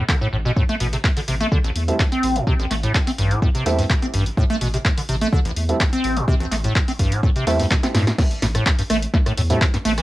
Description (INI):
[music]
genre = acid house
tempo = 126 BPM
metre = 4/4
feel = straight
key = A minor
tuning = A4 = 437 Hz
[part]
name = liquid acid bass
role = riff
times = 0.0-10.0 s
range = A1 to C4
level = -21 LUFS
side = equal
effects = tube saturation, wide subtle chorus, sidechain pumping, cassette tape, tape echo
[part]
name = electronic kick drum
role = drums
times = 0.1-9.7 s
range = none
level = -19 LUFS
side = equal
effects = overdrive, studio reverb, cassette tape
[part]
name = punchy analog drum machine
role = drums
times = 0.1-10.0 s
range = crash cymbal, handclaps, hi-hat, rim click, snare drum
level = -25 LUFS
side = equal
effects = overdrive, studio reverb, cassette tape
[part]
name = saturated sub bass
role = bass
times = 0.3-10.0 s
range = A1 to A2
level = -24 LUFS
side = equal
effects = tube saturation, sidechain pumping
[part]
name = dark concert grand piano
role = stabs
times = 1.9-9.6 s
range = G3 to E4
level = -25 LUFS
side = right 2 dB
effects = cassette tape, tape echo
[sound]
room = moderate studio ambience, RT60 0.5 s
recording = home recording on cassette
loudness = -17 LUFS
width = side -17 dB against mid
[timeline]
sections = 0.0-8.2 A section; 8.2-10.0 B section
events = drum fill 7.7-8.2; drop 8.2-10.0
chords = 0.0 Am; 8.2 A5